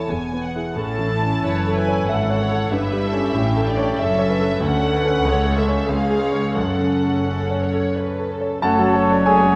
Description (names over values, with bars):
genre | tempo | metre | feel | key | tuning
classical | 85-96 BPM | 3/4 | rubato | A major, F# minor from 4.6 s | A4 = 443 Hz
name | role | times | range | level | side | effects
clear concert grand piano | melody | 0.0-9.6 s | C#2 to A5 | -23 LUFS | equal | none
dark studio violin section | melody | 0.0-9.6 s | F#4 to A5 | -30 LUFS | equal | none
dark studio violin section | second line | 0.0-9.6 s | A3 to G#5 | -31 LUFS | equal | none
warm studio viola section | accompaniment | 0.1-9.6 s | F#3 to B4 | -30 LUFS | equal | none
warm studio cello section | bass | 0.1-9.6 s | C#2 to A2 | -28 LUFS | equal | none
warm studio double bass section | bass | 0.1-9.6 s | E1 to D2 | -30 LUFS | equal | none
silver concert flute | second line | 8.6-9.6 s | G#5 to A5 | -25 LUFS | equal | none
warm clarinet | second line | 8.6-9.6 s | C#4 | -32 LUFS | equal | none
warm oboe | second line | 8.6-9.6 s | C#5 | -27 LUFS | equal | none
mellow bassoon | accompaniment | 8.6-9.6 s | F#3 | -30 LUFS | equal | none
dark French horn section | sustained chords | 8.6-9.6 s | G#3 to A3 | -27 LUFS | equal | none
warm trumpet | stabs | 8.6-9.6 s | G#4 to A4 | -27 LUFS | equal | none
room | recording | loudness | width
wet scoring stage reverb, RT60 1.9 s | none | -20 LUFS | mono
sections
0.0-8.6 A section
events
none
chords
0.1 E; 0.8 A; 2.7 A7/G; 4.6 Dmaj7; 5.3 F#m/C#; 5.9 C#; 6.6 F#m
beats
0.09 | 0.77 1.43 2.08 | 2.72 3.36 4.00 | 4.63 5.26 5.89 | 6.57 7.27 7.96 | 8.64 9.27